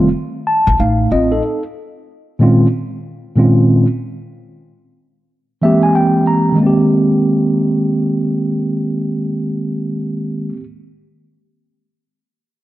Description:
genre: hip hop.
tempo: 93 BPM.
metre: 4/4.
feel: swing 61% on 16ths.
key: Ab major.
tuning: A4 = 439 Hz.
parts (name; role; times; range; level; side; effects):
mellow tine electric piano; accompaniment; 0.0-10.6 s; Bb2 to Bb5; -13 LUFS; equal; medium stereo tremolo.
upright bass; bass; 0.0-1.4 s; A1; -17 LUFS; left 1 dB; none.
room: moderate echo chamber reverb, RT60 1.9 s.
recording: dark, warm production.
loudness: -13 LUFS.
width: side -15 dB against mid.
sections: 0.0-6.6 A section; 6.6-9.2 B section.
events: tine electric piano fill 0.1-1.4, 5.3-6.6.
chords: 0.0 F7; 1.4 Bbm11; 4.0 C7b13; 6.6 Abmaj9.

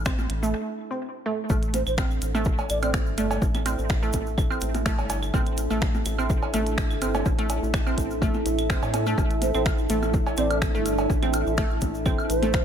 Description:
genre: minimal techno.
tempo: 125 BPM.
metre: 4/4.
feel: swing 54% on 16ths.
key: A minor.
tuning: A4 = 437 Hz.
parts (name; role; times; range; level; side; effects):
rubbery square bass; bass; 0.0-12.6 s; G1 to A2; -29 LUFS; equal; sidechain pumping.
swarming drone; texture; 0.0-12.6 s; E4; -35 LUFS; right 2 dB; built-in reverb, sidechain pumping.
warbly tape-like pad; texture; 0.0-12.6 s; D4 to B5; -32 LUFS; right 1 dB; chorus, built-in reverb, sidechain pumping.
resonant blip pluck; riff; 0.1-12.5 s; A3 to C4; -30 LUFS; right 3 dB; chorus, sidechain pumping, analog delay.
electronic kick drum; drums; 0.1-12.6 s; none; -26 LUFS; equal; none.
minimal click drum kit; drums; 0.1-12.6 s; finger snaps, hi-hat; -33 LUFS; equal; overdrive, analog delay.
claves, percussion blips, woodblock and cowbell; percussion; 0.1-12.6 s; none; -32 LUFS; right 2 dB; tape echo.
egg shaker; percussion; 0.1-12.6 s; none; -42 LUFS; left 4 dB; none.
mellow hollow baroque flute; melody; 1.7-2.9, 9.4-12.6 s; C5 to D5; -30 LUFS; right 1 dB; analog delay.
room: light reverb, digital ambience.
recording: echo-heavy mix.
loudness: -22 LUFS.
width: side -8 dB against mid.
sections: 0.0-1.5 A section; 1.5-12.6 B section.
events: break 0.5-1.5; drop 1.5-12.6.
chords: 0.0 Asus4.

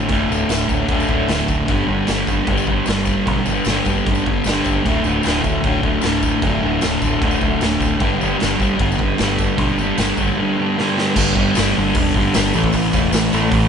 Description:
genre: garage rock duo or trio.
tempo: 152 BPM.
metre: 4/4.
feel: straight.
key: unclear.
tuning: A4 = 440 Hz.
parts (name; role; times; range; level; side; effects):
fuzz guitar; riff; 0.0-13.7 s; D2 to A3; -17 LUFS; equal; distortion.
growling picked electric bass; bass; 0.1-13.7 s; D1 to B1; -24 LUFS; equal; overdrive, tube saturation.
raw garage drum kit; drums; 0.1-13.6 s; crash cymbal, hi-hat, kick drum, snare drum; -22 LUFS; equal; none.
tambourine; percussion; 0.1-13.6 s; none; -33 LUFS; left 6 dB; none.
room: light reverb.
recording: band playing live in one room, nothing above 10.5 kHz.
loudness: -15 LUFS.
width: side -7 dB against mid.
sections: 0.0-11.2 A section; 11.2-13.7 B section.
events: drum fill 10.8-11.2.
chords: 0.0 D5; 1.7 G5; 4.8 D5; 8.0 G5; 12.5 A5.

